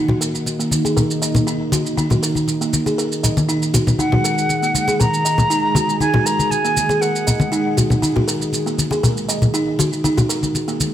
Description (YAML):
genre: afro house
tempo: 119 BPM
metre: 4/4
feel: straight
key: Eb minor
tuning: A4 = 440 Hz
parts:
  - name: warm analog pad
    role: sustained chords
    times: 0.0-10.9 s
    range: Eb3 to Ab4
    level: -23 LUFS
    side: right 2 dB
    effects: chorus, tremolo
  - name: buzzing kalimba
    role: arpeggios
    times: 0.0-10.8 s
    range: Bb3 to Eb5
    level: -22 LUFS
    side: equal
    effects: low-pass filter, dub echo
  - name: congas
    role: percussion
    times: 0.1-10.9 s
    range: none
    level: -20 LUFS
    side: left 1 dB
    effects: none
  - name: shaker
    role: drums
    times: 0.2-10.9 s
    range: none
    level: -24 LUFS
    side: right 4 dB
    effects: overdrive
  - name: silver concert flute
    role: melody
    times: 4.0-7.8 s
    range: Gb5 to Bb5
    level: -20 LUFS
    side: equal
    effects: dub echo
room: moderate recital hall reverb, RT60 1.4 s, small room reverb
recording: none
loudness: -16 LUFS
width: side -11 dB against mid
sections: 0.0-10.9 A section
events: filter sweep on analog synth pad 0.0-10.9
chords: 0.0 Eb5